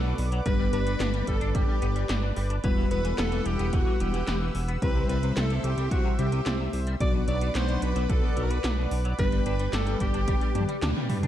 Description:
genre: synthwave.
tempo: 110 BPM.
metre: 4/4.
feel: straight.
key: unclear.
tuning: A4 = 442 Hz.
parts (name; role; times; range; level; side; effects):
breathy tenor saxophone; melody; 0.0-11.1 s; F#4 to D5; -35 LUFS; equal; tape echo.
string machine, violins; second line; 0.0-11.1 s; F#4 to D5; -36 LUFS; equal; ensemble chorus, ping-pong delay.
brassy analog pad; sustained chords; 0.0-11.3 s; B4 to E6; -37 LUFS; right 1 dB; chorus, tremolo, vintage 12-bit sampler grit, sidechain pumping.
clean electric guitar; riff; 0.0-11.3 s; B2 to G4; -38 LUFS; left 2 dB; ensemble chorus, ping-pong delay.
fat analog bass; bass; 0.0-11.3 s; E1 to G2; -28 LUFS; equal; sidechain pumping.
80s electronic pad drums; drums; 0.2-11.3 s; handclaps, hi-hat, snare drum, toms; -32 LUFS; equal; gated reverb on snare and toms.
mellow synth brass; stabs; 0.5-10.7 s; F#3 to C5; -33 LUFS; left 4 dB; chorus, cassette tape.
electronic kick drum; drums; 0.5-10.4 s; none; -27 LUFS; equal; none.
room: light reverb, digital ambience.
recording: dark, warm production.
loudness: -24 LUFS.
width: side -12 dB against mid.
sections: 0.0-11.3 A section.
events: drum fill 10.6-11.3; band accent 10.8.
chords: 0.5 G; 2.6 Emadd9; 4.8 C; 7.0 Bm; 9.2 G.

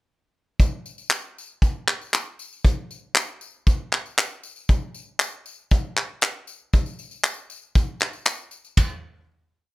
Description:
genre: pop.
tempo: 117 BPM.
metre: 4/4.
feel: straight.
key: none.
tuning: none.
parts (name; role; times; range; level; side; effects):
vintage brush drum kit; drums; 0.6-8.9 s; handclaps, kick drum, ride cymbal, toms; -19 LUFS; equal; none.
tambourine; percussion; 0.6-9.0 s; none; -39 LUFS; left 5 dB; none.
room: little or no reverb.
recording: none.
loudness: -22 LUFS.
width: side -19 dB against mid.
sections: 0.6-8.8 verse; 8.8-9.7 final hit.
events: none.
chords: none.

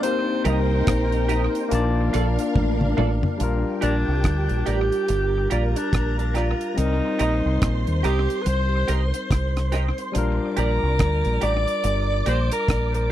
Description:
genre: lovers rock reggae.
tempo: 71 BPM.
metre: 4/4.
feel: swing 60% on 16ths.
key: Bb major.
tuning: A4 = 440 Hz.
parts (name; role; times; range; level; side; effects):
breathy alto saxophone; melody; 0.0-13.1 s; D4 to D5; -26 LUFS; right 1 dB; tape echo.
soft string machine; second line; 0.0-13.1 s; D4 to D6; -31 LUFS; equal; ensemble chorus.
barky tine electric piano; accompaniment; 0.0-13.1 s; G3 to A5; -28 LUFS; left 4 dB; overdrive.
deep reggae drum kit; drums; 0.0-13.1 s; hi-hat, kick drum, rim click, toms; -25 LUFS; equal; tape echo.
twelve-string electric guitar; stabs; 0.4-12.6 s; F4 to Eb5; -28 LUFS; right 6 dB; analog chorus.
deep dub fingered electric bass; bass; 0.5-13.1 s; G1 to Eb2; -22 LUFS; equal; none.
room: little or no reverb.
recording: dry, close 1970s-style studio recording.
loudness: -20 LUFS.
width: side -12 dB against mid.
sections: 0.0-3.4 A section; 3.4-13.1 B section.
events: drum fill 2.6-3.4; alto saxophone solo 3.4-13.1.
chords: 0.0 Cm7; 1.7 Bbmaj7; 3.4 Bb6; 6.8 Cm7; 10.2 Bb6.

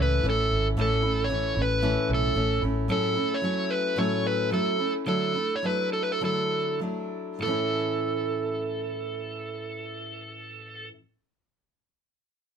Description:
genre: acoustic pop.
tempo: 96-113 BPM.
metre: 4/4.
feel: swing 60% on 16ths.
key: A major.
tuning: A4 = 440 Hz.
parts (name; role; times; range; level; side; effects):
overdriven slide guitar; melody; 0.0-10.9 s; A4 to C#5; -27 LUFS; right 3 dB; none.
fingerpicked steel-string acoustic guitar; accompaniment; 0.0-11.0 s; A2 to E4; -29 LUFS; left 2 dB; none.
vintage muted fingered electric bass; bass; 0.0-2.9 s; G#1 to C#2; -27 LUFS; equal; none.
room: moderate small room reverb, RT60 0.5 s.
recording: band playing live in one room.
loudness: -24 LUFS.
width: side -7 dB against mid.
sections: 0.0-7.4 A section; 7.4-12.4 B section.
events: slowing down 2.9-7.4.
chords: 0.0 A; 2.6 F#m7/A; 5.1 Dadd9; 7.4 A.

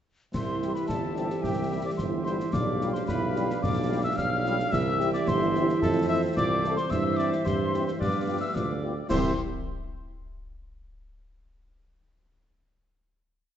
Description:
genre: military-style march for wind band.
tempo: 110 BPM.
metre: 2/4.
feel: straight.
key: C major.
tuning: A4 = 440 Hz.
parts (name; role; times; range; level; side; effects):
mellow cornet; melody; 0.3-9.3 s; G4 to F5; -33 LUFS; right 1 dB; none.
clear woodwind section; second line; 0.3-9.3 s; G4 to F5; -35 LUFS; left 2 dB; none.
mellow hollow piccolo; second line; 0.3-9.4 s; G5 to F6; -34 LUFS; left 4 dB; none.
warm euphonium; second line; 0.3-8.8 s; C4 to G4; -33 LUFS; right 3 dB; none.
dark trombone section; sustained chords; 0.3-9.3 s; E3 to C4; -35 LUFS; right 2 dB; none.
clear tuba; bass; 0.3-9.3 s; G1 to G2; -30 LUFS; right 3 dB; none.
concert snare drum, clash cymbals and concert bass drum; drums; 0.3-9.4 s; none; -34 LUFS; left 2 dB; none.
warm French horn section; accompaniment; 0.6-9.3 s; G3 to A4; -35 LUFS; left 3 dB; none.
room: wet scoring stage reverb, RT60 1.6 s.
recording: nothing above 7.9 kHz.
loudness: -24 LUFS.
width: side -10 dB against mid.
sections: 0.3-9.1 A section; 9.1-10.2 final chord.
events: none.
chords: 0.3 C; 2.5 G7/B; 4.7 C; 5.8 Fmaj7; 6.9 C/G; 8.0 G7; 9.1 C.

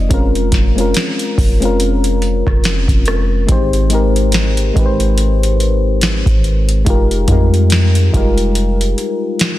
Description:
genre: contemporary R&B.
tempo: 71 BPM.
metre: 4/4.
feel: swing 58% on 16ths.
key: unclear.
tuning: A4 = 444 Hz.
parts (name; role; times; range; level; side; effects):
mellow FM electric piano; accompaniment; 0.0-9.6 s; G3 to Eb5; -17 LUFS; left 2 dB; chorus.
warm 808-style bass; bass; 0.0-8.9 s; F1 to F2; -14 LUFS; equal; none.
booming analog drum machine; drums; 0.1-9.6 s; hi-hat, kick drum, rim click, snare drum; -15 LUFS; equal; none.
room: little or no reverb.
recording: dense, heavily limited modern master.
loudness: -11 LUFS.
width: side -15 dB against mid.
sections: 0.0-3.5 A section; 3.5-9.6 B section.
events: none.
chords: 0.1 Bbm9/F; 3.5 Abmaj7; 6.9 Fm11.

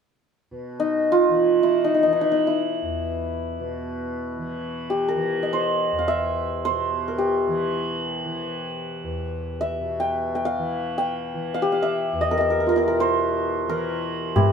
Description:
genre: indian classical, Hindustani.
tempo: free time.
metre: none.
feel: none.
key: E raga todi.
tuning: A4 = 440 Hz.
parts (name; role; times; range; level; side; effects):
tanpura; drone; 0.5-14.5 s; E2 to E3; -30 LUFS; equal; none.
santur; melody; 0.8-14.5 s; D#4 to G5; -22 LUFS; equal; none.
tabla; percussion; 14.4-14.5 s; none; -16 LUFS; right 1 dB; none.
room: moderate stone room reverb, RT60 1.0 s.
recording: band playing live in one room.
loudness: -21 LUFS.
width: side -6 dB against mid.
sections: 0.5-14.4 A section.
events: none.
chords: none.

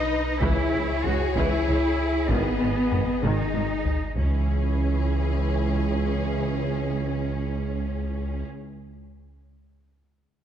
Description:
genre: cinematic, hybrid orchestral and electronic film score.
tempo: 64 BPM (dotted quarters).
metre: 6/8.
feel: straight.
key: C# minor.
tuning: A4 = 440 Hz.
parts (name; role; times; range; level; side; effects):
warm symphonic violin section; melody; 0.0-8.4 s; C#5 to D#5; -37 LUFS; left 5 dB; low-pass filter.
warm symphonic violin section; second line; 0.0-8.5 s; G#4 to B4; -35 LUFS; left 5 dB; none.
mellow French horn section; sustained chords; 0.0-8.4 s; E3 to F#4; -30 LUFS; left 3 dB; low-pass filter.
pure sine sub bass; bass; 0.0-8.4 s; G#1 to C#2; -30 LUFS; equal; none.
rich symphonic cello section; bass; 0.0-8.4 s; B3 to F#4; -30 LUFS; right 2 dB; none.
rich symphonic viola section; accompaniment; 0.4-8.4 s; D#3 to E4; -36 LUFS; right 1 dB; low-pass filter.
mellow tuba; bass; 0.4-8.4 s; G#1 to C#2; -32 LUFS; right 5 dB; none.
rich chamber double bass section; bass; 0.4-8.4 s; G#1 to C#2; -30 LUFS; right 3 dB; none.
taiko ensemble; drums; 0.4-4.3 s; none; -30 LUFS; left 1 dB; none.
room: moderate concert hall reverb, RT60 2.1 s.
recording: dark, warm production.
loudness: -22 LUFS.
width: side -9 dB against mid.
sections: 0.0-4.2 A section; 4.2-7.9 B section.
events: filter sweep 0.0-4.2; drum fill 3.2-4.2.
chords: 0.4 C#m; 2.3 G#m; 4.2 C#m.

